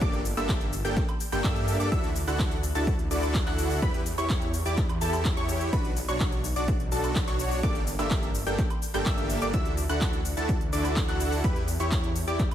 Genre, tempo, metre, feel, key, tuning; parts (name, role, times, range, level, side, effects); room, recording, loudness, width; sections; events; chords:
EDM, festival progressive house; 126 BPM; 4/4; straight; D major; A4 = 441 Hz
wide unison pluck; arpeggios; 0.0-12.5 s; A5 to A6; -36 LUFS; equal; sidechain pumping, ping-pong delay
supersaw chords; riff; 0.0-12.5 s; Bb3 to A5; -30 LUFS; equal; sidechain pumping, ping-pong delay
wide detuned saw bass; bass; 0.0-12.5 s; G1 to G2; -31 LUFS; equal; chorus, sidechain pumping
big-room dance drum kit; drums; 0.0-12.5 s; handclaps, hi-hat, shaker, woodblock; -35 LUFS; equal; overdrive
electronic kick drum; drums; 0.0-12.5 s; -28 LUFS; equal; overdrive
digital ambience; -24 LUFS; side -11 dB against mid
0.0-12.5 A section
0.0 Gmadd9; 1.9 Dadd9; 3.8 Em; 5.7 Bm; 7.6 Gmadd9; 9.5 Dadd9; 11.4 Em